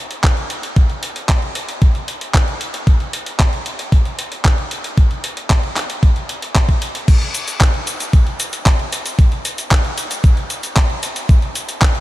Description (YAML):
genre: italo disco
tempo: 114 BPM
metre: 4/4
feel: straight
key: none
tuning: none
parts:
  - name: clean 12-bit digital drum machine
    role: drums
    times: 0.1-12.0 s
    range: cabasa, crash cymbal, handclaps, hi-hat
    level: -21 LUFS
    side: equal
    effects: none
  - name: electronic kick drum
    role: drums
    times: 0.2-11.9 s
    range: none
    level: -12 LUFS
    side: equal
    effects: none
room: light reverb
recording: none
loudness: -14 LUFS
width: side -16 dB against mid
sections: 0.0-7.1 A section; 7.1-12.0 B section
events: none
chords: none